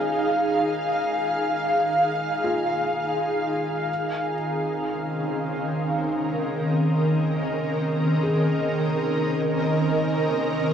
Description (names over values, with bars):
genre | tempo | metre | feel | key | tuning
ambient | free time | none | none | unclear | A4 = 440 Hz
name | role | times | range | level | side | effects
ethereal airy pad | sustained chords | 0.0-10.7 s | Eb3 to F5 | -22 LUFS | equal | ensemble chorus, built-in reverb, tremolo, cassette tape
felt-muted upright piano | arpeggios | 0.0-10.7 s | Db4 to Ab4 | -34 LUFS | left 1 dB | cassette tape, analog delay
organ-like drone | drone | 0.0-10.7 s | Eb3 to Eb4 | -32 LUFS | right 1 dB | ensemble chorus, built-in reverb, cassette tape
glass harmonica | texture | 0.0-10.7 s | Ab4 to Ab5 | -34 LUFS | left 1 dB | cassette tape
room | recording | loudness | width
wet booth ambience, RT60 0.2 s | home recording on cassette | -22 LUFS | side -8 dB against mid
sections
0.0-10.7 A section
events
fade-in on synth drone 0.0-10.7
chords
0.0 Eb9sus4; 3.9 Dbadd9/Eb